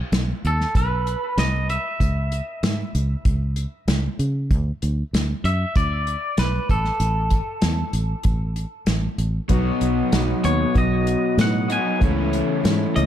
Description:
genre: folk rock and heartland rock.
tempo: 96 BPM.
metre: 4/4.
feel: straight.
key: unclear.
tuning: A4 = 440 Hz.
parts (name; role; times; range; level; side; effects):
fingered electric bass; bass; 0.1-13.1 s; A1 to C#3; -22 LUFS; equal; none.
unplugged drum kit; drums; 0.1-13.1 s; hi-hat, kick drum, snare drum; -23 LUFS; equal; none.
twangy electric guitar; melody; 0.5-13.1 s; A4 to G#5; -26 LUFS; equal; spring reverb, analog delay.
picked steel-string acoustic guitar; accompaniment; 9.5-13.1 s; B2 to F#4; -25 LUFS; left 4 dB; none.
mellow tonewheel organ; sustained chords; 9.5-13.1 s; A4 to D#6; -34 LUFS; equal; slow rotary speaker.
crunchy overdriven guitar; riff; 9.5-13.1 s; B2 to F#4; -23 LUFS; equal; none.
room: light reverb, small room ambience.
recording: dark, warm production.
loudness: -19 LUFS.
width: side -11 dB against mid.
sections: 0.0-13.1 A section.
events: none.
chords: 0.0 B; 2.0 C#m; 4.5 N.C.; 6.7 A5; 9.5 B; 12.0 A/C#.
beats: 0.13 0.75 1.38 | 2.00 2.63 3.26 3.88 | 4.51 5.13 5.76 6.38 | 7.01 7.63 8.26 8.88 | 9.51 10.13 10.76 11.38 | 12.01 12.64.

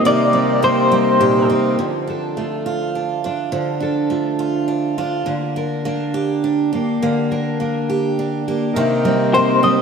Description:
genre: acoustic folk duo or small band.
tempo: 103 BPM.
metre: 3/4.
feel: straight.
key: unclear.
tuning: A4 = 440 Hz.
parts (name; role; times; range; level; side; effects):
electric guitar through a small old amp; melody; 0.0-1.5, 9.3-9.8 s; C5 to Eb5; -16 LUFS; left 2 dB; tremolo, tape echo.
fingerpicked steel-string acoustic guitar; accompaniment; 0.0-9.8 s; Bb2 to Bb4; -20 LUFS; left 1 dB; analog chorus.
hand-pumped harmonium; sustained chords; 0.0-1.8, 8.7-9.8 s; C3 to Eb4; -22 LUFS; equal; none.
picked steel-string acoustic guitar; arpeggios; 0.0-9.8 s; Eb3 to G4; -21 LUFS; right 6 dB; none.
room: wet lush hall reverb, RT60 3.1 s.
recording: dreamy mix soaked in reverb.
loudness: -16 LUFS.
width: side -6 dB against mid.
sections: 0.0-1.8 A section; 1.8-8.8 B section; 8.8-9.8 A section.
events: none.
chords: 0.0 Cm7; 1.8 Dm; 5.3 Gm/D; 8.8 Cm7.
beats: | 0.04 0.62 1.20 | 1.78 2.36 2.94 | 3.52 4.10 4.68 | 5.27 5.85 6.43 | 7.01 7.59 8.18 | 8.76 9.34.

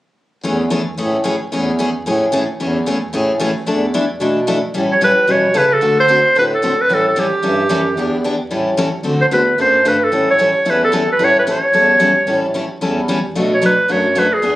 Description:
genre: acoustic string swing (jazz manouche).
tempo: 223 BPM.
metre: 4/4.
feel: swing 56% on 8ths.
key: A major, A mixolydian from 4.7 s.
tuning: A4 = 440 Hz.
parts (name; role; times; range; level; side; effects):
picked steel-string acoustic guitar; accompaniment; 0.4-14.6 s; B2 to A4; -19 LUFS; left 2 dB; none.
warm bass clarinet; bass; 0.4-14.6 s; E2 to D3; -20 LUFS; right 1 dB; none.
bright clarinet; melody; 4.9-14.6 s; G4 to C#5; -13 LUFS; right 1 dB; none.
room: light reverb.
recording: recorded on a phone in the room, club reverb, compression.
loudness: -13 LUFS.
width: side -16 dB against mid.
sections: 0.4-4.7 A section; 4.7-14.6 B section.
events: none.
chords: 0.4 Amaj7/E; 3.7 E7sus4; 4.7 A7; 5.8 D7; 6.9 A7; 8.0 Em7; 8.5 A7; 9.0 D7; 10.1 A7; 13.3 Bm7.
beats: | 0.44 0.71 0.98 1.25 | 1.51 1.78 2.05 2.32 | 2.59 2.86 3.13 3.40 | 3.66 3.93 4.20 4.47 | 4.74 5.01 5.28 5.55 | 5.82 6.08 6.35 6.62 | 6.89 7.16 7.43 7.70 | 7.97 8.24 8.51 8.77 | 9.04 9.31 9.58 9.85 | 10.12 10.39 10.66 10.93 | 11.19 11.46 11.73 12.00 | 12.27 12.54 12.81 13.08 | 13.34 13.61 13.88 14.15 | 14.42.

